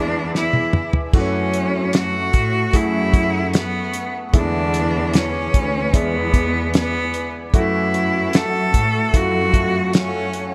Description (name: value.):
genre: pop ballad.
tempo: 75 BPM.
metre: 4/4.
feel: straight.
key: F# minor.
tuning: A4 = 441 Hz.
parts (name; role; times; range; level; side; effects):
bright cello; melody; 0.0-10.5 s; B3 to A4; -24 LUFS; equal; none.
clear concert grand piano; accompaniment; 0.0-10.5 s; D3 to G#4; -29 LUFS; equal; lush chorus.
glassy FM pad; sustained chords; 0.0-10.5 s; A3 to D6; -31 LUFS; equal; ensemble chorus, built-in reverb.
rich studio cello section; bass; 0.0-10.3 s; D2 to A2; -26 LUFS; equal; none.
damped 70s drum kit; drums; 0.3-10.5 s; hi-hat, kick drum, snare drum, splash cymbal, toms; -19 LUFS; equal; none.
room: light reverb.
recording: bright 1980s-style digital production.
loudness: -19 LUFS.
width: mono.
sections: 0.0-10.5 A section.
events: drum fill 0.3-1.1.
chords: 0.0 E7; 1.1 F#m7; 4.3 E7; 7.5 F#m7.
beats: 0.34 | 1.14 1.94 2.73 3.54 | 4.33 5.13 5.93 6.74 | 7.54 8.34 9.13 9.94.